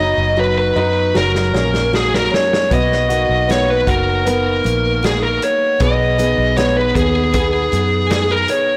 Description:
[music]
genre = pop ballad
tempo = 77 BPM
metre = 4/4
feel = straight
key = B major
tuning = A4 = 440 Hz
[part]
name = high-gain lead guitar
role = melody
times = 0.0-8.8 s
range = G#4 to D#5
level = -19 LUFS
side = equal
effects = distortion
[part]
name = clear concert grand piano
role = accompaniment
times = 0.0-8.8 s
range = F#3 to F#4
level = -24 LUFS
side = equal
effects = none
[part]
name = picked steel-string acoustic guitar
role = arpeggios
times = 0.0-8.8 s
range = F#2 to G#4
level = -26 LUFS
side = equal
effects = none
[part]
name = vintage muted fingered electric bass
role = bass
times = 0.0-8.5 s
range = F#1 to F#2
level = -23 LUFS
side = equal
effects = none
[part]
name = natural country drum kit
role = drums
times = 1.2-8.7 s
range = hi-hat, kick drum, snare drum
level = -24 LUFS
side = equal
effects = none
[sound]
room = light reverb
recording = blown-out, overdriven recording, overdrive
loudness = -16 LUFS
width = mono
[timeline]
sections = 0.0-8.8 A section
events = drum fill 1.1-2.7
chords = 0.0 B/F#; 1.1 F#; 2.7 Bmaj7; 5.8 G#m/B

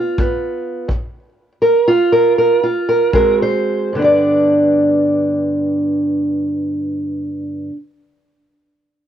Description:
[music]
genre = acoustic country blues, solo or duo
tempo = 74-86 BPM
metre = 4/4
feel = swing 67% on 8ths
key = G mixolydian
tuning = A4 = 439 Hz
[part]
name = fingerpicked steel-string acoustic guitar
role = melody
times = 0.0-7.8 s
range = G2 to D5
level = -14 LUFS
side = right 1 dB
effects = cassette tape
[part]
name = kick drum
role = drums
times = 0.2-3.4 s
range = none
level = -20 LUFS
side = equal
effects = cassette tape
[sound]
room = light reverb, small room ambience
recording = home recording on cassette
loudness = -13 LUFS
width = side -10 dB against mid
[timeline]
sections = 0.0-3.9 A section; 3.9-7.2 B section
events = slowing down 0.0-3.9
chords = 0.0 G7; 0.9 N.C.; 3.1 Ab7; 3.9 G

